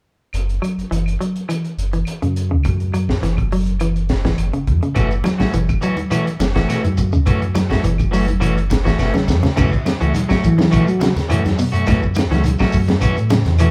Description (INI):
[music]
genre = afrobeat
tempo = 104 BPM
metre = 4/4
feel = straight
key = F# minor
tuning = A4 = 441 Hz
[part]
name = sub bass with octave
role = bass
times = 0.3-13.7 s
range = F#1 to F#3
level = -21 LUFS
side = equal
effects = none
[part]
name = crunchy breakbeat drum kit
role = drums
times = 0.3-13.7 s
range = crash cymbal, hi-hat, kick drum, snare drum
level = -24 LUFS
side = equal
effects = none
[part]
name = claves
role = percussion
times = 0.3-13.7 s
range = none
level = -39 LUFS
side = equal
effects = none
[part]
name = clean electric guitar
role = arpeggios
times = 0.6-13.7 s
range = A2 to F#3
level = -24 LUFS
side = equal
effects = none
[part]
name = electric guitar at the edge of break-up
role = stabs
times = 4.9-13.7 s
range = E3 to F#4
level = -26 LUFS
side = equal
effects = none
[part]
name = shekere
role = percussion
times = 5.0-13.7 s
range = none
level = -30 LUFS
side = equal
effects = none
[part]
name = congas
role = percussion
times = 5.2-13.6 s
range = none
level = -25 LUFS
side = equal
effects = none
[sound]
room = light reverb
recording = band playing live in one room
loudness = -18 LUFS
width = mono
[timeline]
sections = 0.3-9.6 A section; 9.6-13.7 B section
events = drum fill 9.0-9.6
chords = 0.3 F#m7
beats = | 0.34 0.92 1.50 2.08 | 2.66 3.23 3.81 4.39 | 4.97 5.55 6.12 6.70 | 7.28 7.85 8.43 9.00 | 9.58 10.15 10.72 11.30 | 11.87 12.44 13.02 13.59